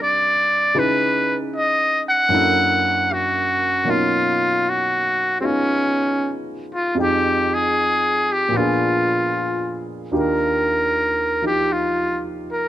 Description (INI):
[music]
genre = jazz ballad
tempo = 77 BPM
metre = 4/4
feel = swing 67% on 8ths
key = unclear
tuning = A4 = 440 Hz
[part]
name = trumpet with metal mute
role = melody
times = 0.0-12.7 s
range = C4 to Gb5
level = -18 LUFS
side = equal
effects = none
[part]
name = warm baby grand piano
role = accompaniment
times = 0.0-12.7 s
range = Eb2 to G5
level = -23 LUFS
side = equal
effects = none
[sound]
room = light reverb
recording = none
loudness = -17 LUFS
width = side -12 dB against mid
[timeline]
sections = 0.0-10.1 A section; 10.1-12.7 B section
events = muted trumpet solo 10.1-12.7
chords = 0.0 Cm9; 0.7 Dbm9; 2.3 Gb7alt; 3.9 Bmaj9#11; 7.0 Fm9; 8.5 Bb7b9; 10.1 Ebmaj9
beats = | 0.74 1.53 2.31 3.08 | 3.86 4.63 5.41 6.18 | 6.96 7.74 8.53 9.32 | 10.12 10.90 11.69 12.47